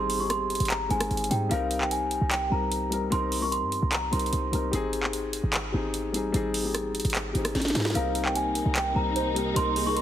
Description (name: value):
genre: hip hop, trap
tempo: 149 BPM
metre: 4/4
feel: half-time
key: C minor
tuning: A4 = 439 Hz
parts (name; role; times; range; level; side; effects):
- celesta; melody; 0.0-4.7, 8.0-10.0 s; F5 to Db6; -29 LUFS; right 1 dB; none
- dark concert grand piano; accompaniment; 0.0-10.0 s; G3 to Bb4; -30 LUFS; left 3 dB; none
- short 808-style bass; bass; 0.0-10.0 s; Ab1 to Ab2; -31 LUFS; equal; none
- trap drum kit; drums; 0.1-10.0 s; handclaps, hi-hat, rim click, snare drum; -30 LUFS; right 1 dB; none
- warm velvety synth lead; second line; 8.0-10.0 s; G4 to C5; -34 LUFS; right 2 dB; chorus, ping-pong delay
- warm studio string section; sustained chords; 8.0-10.0 s; C3 to Eb4; -33 LUFS; equal; none
room: light reverb, studio reverb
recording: heavily compressed radio sound, multiband compression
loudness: -24 LUFS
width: side -11 dB against mid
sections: 0.0-8.0 A section; 8.0-10.0 B section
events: drum fill 7.5-8.0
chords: 0.0 Abmaj7; 1.5 Cm7; 4.7 Abmaj7; 8.0 Cm7